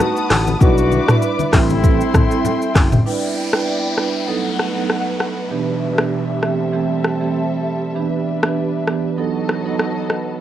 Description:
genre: afrobeats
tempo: 98 BPM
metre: 4/4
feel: swing 55% on 16ths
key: E minor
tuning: A4 = 441 Hz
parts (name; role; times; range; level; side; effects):
- warm horn section; second line; 0.0-2.7 s; A3 to F#4; -23 LUFS; left 8 dB; cassette tape, plate reverb
- marimba with medium mallets; accompaniment; 0.0-9.9 s; B2 to B4; -21 LUFS; right 7 dB; cassette tape, plate reverb
- dark studio string section; sustained chords; 0.0-10.4 s; B2 to D#6; -24 LUFS; left 2 dB; cassette tape, plate reverb
- afro-pop drum kit; drums; 0.0-10.3 s; handclaps, hi-hat, kick drum, rim click, shaker, toms; -16 LUFS; equal; cassette tape
- congas; percussion; 0.0-3.1 s; none; -25 LUFS; left 8 dB; none
- fingered electric bass; bass; 0.3-3.0 s; F#1 to B1; -18 LUFS; equal; none
- downlifter; sound effects; 3.1-8.0 s; none; -30 LUFS; left 1 dB; none
room: light reverb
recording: home recording on cassette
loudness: -15 LUFS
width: side -11 dB against mid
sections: 0.0-3.1 A section; 3.1-10.4 B section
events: none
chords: 0.0 B7; 0.6 Em7/B; 1.5 Am7; 3.1 Em7; 4.3 B7; 5.5 Em7/B; 6.4 Am7; 8.0 Em7; 9.2 B7

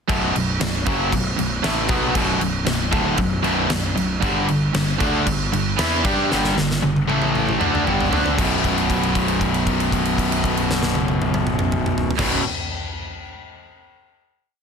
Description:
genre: hard rock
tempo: 116 BPM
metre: 4/4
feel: straight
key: B minor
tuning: A4 = 440 Hz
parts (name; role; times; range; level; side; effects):
- cranked stack guitar; riff; 0.1-12.4 s; B1 to G4; -23 LUFS; right 12 dB; overdrive
- overdriven electric guitar; riff; 0.1-12.4 s; B1 to G4; -23 LUFS; left 11 dB; none
- fuzz picked electric bass; bass; 0.1-12.4 s; B0 to G2; -26 LUFS; equal; overdrive
- huge arena drum kit; drums; 0.1-12.3 s; crash cymbal, kick drum, snare drum, toms; -24 LUFS; equal; none
room: light reverb, small room ambience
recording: dense, heavily limited modern master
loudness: -18 LUFS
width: side -6 dB against mid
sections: 0.1-8.4 riff; 8.4-12.5 final chord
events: drum fill 6.3-8.4; held note 8.4-12.2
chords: 0.1 Bm; 4.2 G5; 7.1 A5; 7.6 G5; 8.4 B5

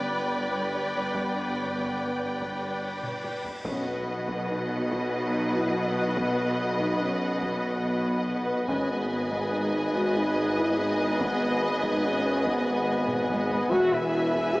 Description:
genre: cinematic, epic orchestral film score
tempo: 95 BPM (dotted quarters)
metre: 12/8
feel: straight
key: B major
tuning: A4 = 437 Hz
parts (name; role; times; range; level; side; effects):
- warm symphonic violin section; melody; 0.0-14.6 s; F#5 to G#5; -37 LUFS; left 1 dB; none
- warm symphonic violin section; second line; 0.0-14.6 s; D5 to E5; -33 LUFS; equal; none
- warm symphonic viola section; accompaniment; 0.0-14.6 s; B4; -33 LUFS; equal; none
- mellow French horn section; sustained chords; 0.0-14.6 s; G3 to G#4; -29 LUFS; left 1 dB; none
- warm symphonic cello section; bass; 0.0-14.6 s; E2 to B2; -35 LUFS; equal; none
- warm symphonic double bass section; bass; 0.0-14.6 s; E1 to B1; -38 LUFS; right 1 dB; none
- taiko ensemble; drums; 1.1-14.6 s; none; -39 LUFS; equal; none
- cymbal swell and sub drop; sound effects; 2.7-6.2 s; none; -46 LUFS; equal; none
- dark symphonic string section; sustained chords; 3.7-14.6 s; B3 to E5; -33 LUFS; equal; none
- warm tuba; bass; 3.7-14.6 s; E1 to B1; -32 LUFS; right 1 dB; none
room: wet scoring stage reverb, RT60 1.5 s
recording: small speaker sound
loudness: -24 LUFS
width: side -21 dB against mid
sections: 0.0-3.7 A section; 3.7-14.6 A section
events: cymbal swell 2.7-3.7; drum fill 3.0-3.7, 13.1-13.7; impact 3.7-6.2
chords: 0.0 G; 3.7 B; 8.7 G#m; 13.7 E

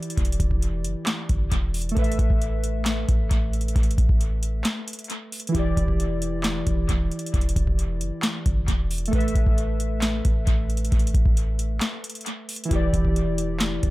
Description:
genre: hip hop, trap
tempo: 134 BPM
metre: 4/4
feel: half-time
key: E minor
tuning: A4 = 439 Hz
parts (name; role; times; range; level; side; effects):
- warbly lo-fi synth keys; accompaniment; 0.0-13.9 s; E3 to E5; -29 LUFS; equal; chorus, low-pass filter
- booming analog drum machine; drums; 0.0-13.9 s; handclaps, hi-hat, kick drum, snare drum; -24 LUFS; equal; overdrive, dub echo
- clean 808-style bass; bass; 0.2-13.9 s; E1 to A1; -24 LUFS; equal; none
room: little or no reverb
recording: echo-heavy mix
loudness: -21 LUFS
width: side -18 dB against mid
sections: 0.0-13.9 A section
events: break 4.7-5.5, 11.8-12.7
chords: 0.0 Em7; 2.0 Asus2; 5.5 Em7; 9.1 Asus2; 12.7 Em7

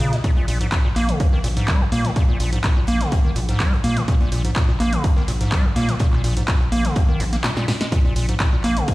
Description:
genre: acid house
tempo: 125 BPM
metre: 4/4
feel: straight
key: Bb minor pentatonic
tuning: A4 = 440 Hz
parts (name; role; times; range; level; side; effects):
- acid bass, square; riff; 0.0-8.9 s; Bb1 to Bb3; -22 LUFS; equal; overdrive, sidechain pumping, tape echo
- saturated sub bass; bass; 0.0-8.8 s; Bb1 to Bb2; -23 LUFS; equal; sidechain pumping
- oversized low-tuned drum kit; drums; 0.0-8.9 s; hi-hat, snare drum; -36 LUFS; left 1 dB; sidechain pumping on hats, high-pass filter on hats, high-pass filter on snare, high-pass filter on room
- punchy analog drum machine; drums; 0.0-8.9 s; handclaps, hi-hat, snare drum; -28 LUFS; equal; none
- electronic kick drum; drums; 0.2-8.9 s; none; -20 LUFS; equal; none
room: light reverb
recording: played on a big sound system in a bare room, stone room reverb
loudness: -17 LUFS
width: side -19 dB against mid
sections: 0.0-8.9 A section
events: drum fill 7.4-7.9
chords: 0.0 Bb5

